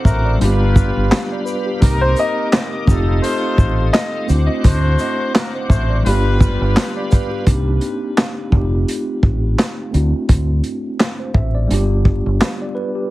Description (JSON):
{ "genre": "hip hop, boom-bap hip-hop", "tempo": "85 BPM", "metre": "4/4", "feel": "swing 57% on 16ths", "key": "unclear", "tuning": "A4 = 440 Hz", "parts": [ { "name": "mellow tine electric piano", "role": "accompaniment", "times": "0.0-13.1 s", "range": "G3 to E5", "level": "-22 LUFS", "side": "equal", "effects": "medium stereo tremolo, cassette tape, high-pass filter, low-pass filter" }, { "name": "bright tonewheel organ", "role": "sustained chords", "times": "0.0-7.5 s", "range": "G4 to Eb6", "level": "-29 LUFS", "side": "equal", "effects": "chorus vibrato, slow rotary speaker, high-pass filter, low-pass filter" }, { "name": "dark trumpet section", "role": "stabs", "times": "0.1-6.9 s", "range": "G3 to C5", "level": "-25 LUFS", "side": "left 2 dB", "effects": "high-pass filter, low-pass filter, ping-pong delay, plate reverb" }, { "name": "deep dub fingered electric bass", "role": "bass", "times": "0.1-12.4 s", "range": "F1 to D2", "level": "-16 LUFS", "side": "equal", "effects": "none" }, { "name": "vintage drum kit", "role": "drums", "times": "0.1-12.6 s", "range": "handclaps, hi-hat, kick drum, shaker, snare drum", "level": "-16 LUFS", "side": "equal", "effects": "none" }, { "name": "warm upright piano", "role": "melody", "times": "2.0-4.3 s", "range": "C5 to Eb5", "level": "-23 LUFS", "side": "left 2 dB", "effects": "high-pass filter, low-pass filter, ping-pong delay, plate reverb" } ], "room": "little or no reverb", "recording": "heavily compressed radio sound, vinyl crackle", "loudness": "-14 LUFS", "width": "side -17 dB against mid", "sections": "0.0-7.5 A section; 7.5-13.1 B section", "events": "none", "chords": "0.4 G7; 1.8 Cm9; 2.9 F7; 4.3 D7; 6.1 G7; 7.5 Cm9; 8.5 F7; 9.9 D7; 11.7 G7" }